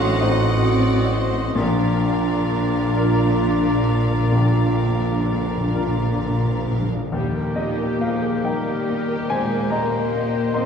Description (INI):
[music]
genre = classical, romantic movement for piano and orchestra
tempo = 42-48 BPM (dotted quarters)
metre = 12/8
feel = rubato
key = Eb major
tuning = A4 = 439 Hz
[part]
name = warm baby grand piano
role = melody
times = 0.0-10.7 s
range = A1 to C6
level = -25 LUFS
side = left 2 dB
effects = none
[part]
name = warm symphonic violin section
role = melody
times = 0.0-10.7 s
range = G4 to F#5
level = -34 LUFS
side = left 3 dB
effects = none
[part]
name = hollow concert flute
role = second line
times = 0.0-10.7 s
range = G4 to C6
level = -32 LUFS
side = right 1 dB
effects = none
[part]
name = warm clarinet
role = second line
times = 0.0-6.7 s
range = F4 to F#4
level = -30 LUFS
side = right 3 dB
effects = none
[part]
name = warm oboe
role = second line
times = 0.0-10.7 s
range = G4 to Eb5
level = -33 LUFS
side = left 1 dB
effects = none
[part]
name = warm symphonic violin section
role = second line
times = 0.0-10.7 s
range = G3 to F5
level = -33 LUFS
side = left 3 dB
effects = none
[part]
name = dark symphonic viola section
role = accompaniment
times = 0.0-10.7 s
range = Bb3 to D4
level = -28 LUFS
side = right 3 dB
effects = none
[part]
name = dark French horn section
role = sustained chords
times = 0.0-10.7 s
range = Eb3 to D4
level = -26 LUFS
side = left 3 dB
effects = none
[part]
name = mellow tuba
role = bass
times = 0.0-6.9 s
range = A1 to Bb1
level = -28 LUFS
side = right 1 dB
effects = none
[part]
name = rich symphonic cello section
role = bass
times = 0.0-10.7 s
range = A2 to C4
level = -31 LUFS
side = right 2 dB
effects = none
[part]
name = rich symphonic double bass section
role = bass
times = 0.0-10.7 s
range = A1 to Eb2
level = -26 LUFS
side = right 1 dB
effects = none
[part]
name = timpani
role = percussion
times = 1.6-8.4 s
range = Bb2 to Eb3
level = -25 LUFS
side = equal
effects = none
[sound]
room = wet concert hall reverb, RT60 1.7 s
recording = heard from further back in the room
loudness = -18 LUFS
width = side -7 dB against mid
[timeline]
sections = 0.0-7.1 A section; 7.1-10.7 B section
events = timpani fill 1.6-7.1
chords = 0.0 Adim7; 1.6 Bb; 7.1 Eb